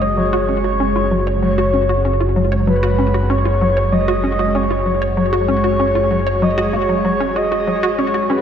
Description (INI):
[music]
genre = ambient, sequencer-driven space music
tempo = 96 BPM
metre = 4/4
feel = straight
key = unclear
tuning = A4 = 438 Hz
[part]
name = breathy flute-like synth lead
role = melody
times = 0.0-8.4 s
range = B4 to D#5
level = -19 LUFS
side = left 1 dB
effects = lush chorus, cassette tape, ping-pong delay
[part]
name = sweeping resonant pad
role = sustained chords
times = 0.0-8.4 s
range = G#3 to G#4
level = -22 LUFS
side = right 1 dB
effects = chorus
[part]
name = hollow square pluck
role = riff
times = 0.0-8.4 s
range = F#3 to C#5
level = -20 LUFS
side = left 1 dB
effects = wide subtle chorus, ping-pong delay
[part]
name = analog drone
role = bass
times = 0.0-8.4 s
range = F#1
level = -20 LUFS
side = equal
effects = chorus
[part]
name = bubbling stepped-filter texture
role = texture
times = 0.8-8.4 s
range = C#5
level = -27 LUFS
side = right 2 dB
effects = none
[sound]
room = wet lush hall reverb, RT60 2.7 s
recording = none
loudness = -14 LUFS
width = side -8 dB against mid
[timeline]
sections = 0.0-8.4 A section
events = filter sweep on synth arpeggio sound 0.0-8.4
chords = 0.0 F#sus2